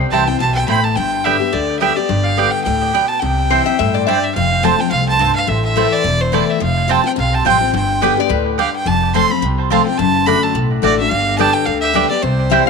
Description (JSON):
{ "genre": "bluegrass", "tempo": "213 BPM", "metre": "4/4", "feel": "swing 56% on 8ths", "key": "unclear", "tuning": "A4 = 440 Hz", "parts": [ { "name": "lap resonator guitar", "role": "second line", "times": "0.0-0.1, 3.5-4.3, 8.0-8.5, 12.5-12.7 s", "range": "B4 to E5", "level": "-21 LUFS", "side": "left 10 dB", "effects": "none" }, { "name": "picked steel-string acoustic guitar", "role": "accompaniment", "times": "0.0-12.7 s", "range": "E2 to G4", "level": "-18 LUFS", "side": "left 11 dB", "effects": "none" }, { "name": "clear fiddle", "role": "melody", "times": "0.1-12.7 s", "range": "C5 to C6", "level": "-18 LUFS", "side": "right 2 dB", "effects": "none" }, { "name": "mandolin", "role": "stabs", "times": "0.1-12.6 s", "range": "A3 to A5", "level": "-19 LUFS", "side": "right 12 dB", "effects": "tape echo" }, { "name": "upright bass", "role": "bass", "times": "0.1-12.6 s", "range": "E1 to G2", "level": "-20 LUFS", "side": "right 1 dB", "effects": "none" } ], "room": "moderate plate reverb, RT60 2.7 s", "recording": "1960s-style stereo with parts hard left and right", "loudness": "-13 LUFS", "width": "side -4 dB against mid", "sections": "0.0-4.4 A section; 4.4-12.7 B section", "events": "none", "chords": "0.0 C; 1.0 G; 3.2 C; 4.4 F; 5.5 Am; 6.6 Fsus2; 7.7 G; 8.9 F; 10.0 D/F#; 11.1 G" }